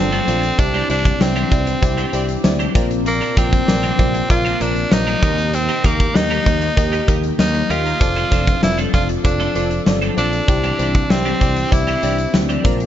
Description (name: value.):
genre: 1980s-style pop.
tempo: 97 BPM.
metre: 4/4.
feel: straight.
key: unclear.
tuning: A4 = 438 Hz.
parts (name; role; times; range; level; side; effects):
raspy tenor saxophone; melody; 0.0-12.3 s; Bb3 to F4; -21 LUFS; equal; ping-pong delay.
FM electric piano; accompaniment; 0.0-12.9 s; Bb2 to E5; -23 LUFS; left 2 dB; chorus, phaser.
string machine, full ensemble; sustained chords; 0.0-12.9 s; C3 to A4; -27 LUFS; left 1 dB; ensemble chorus.
fretless electric bass; bass; 0.0-12.9 s; F1 to Eb2; -22 LUFS; equal; none.
twelve-string electric guitar; riff; 0.1-12.8 s; E3 to Bb4; -28 LUFS; right 4 dB; ensemble chorus, ping-pong delay.
big rock drum kit; drums; 0.1-12.9 s; hi-hat, kick drum, snare drum; -19 LUFS; equal; gated reverb.
room: light reverb.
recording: nothing above 7.7 kHz.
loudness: -15 LUFS.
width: side -11 dB against mid.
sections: 0.0-12.9 A section.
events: none.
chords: 0.0 F6; 0.6 Cadd9; 2.8 Bbadd9; 5.2 Eb; 8.0 F6; 10.5 Cadd9.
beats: | 0.59 1.21 1.82 2.44 | 3.06 3.68 4.30 4.92 | 5.54 6.15 6.77 7.39 | 8.01 8.63 9.25 9.87 | 10.48 11.10 11.72 12.34.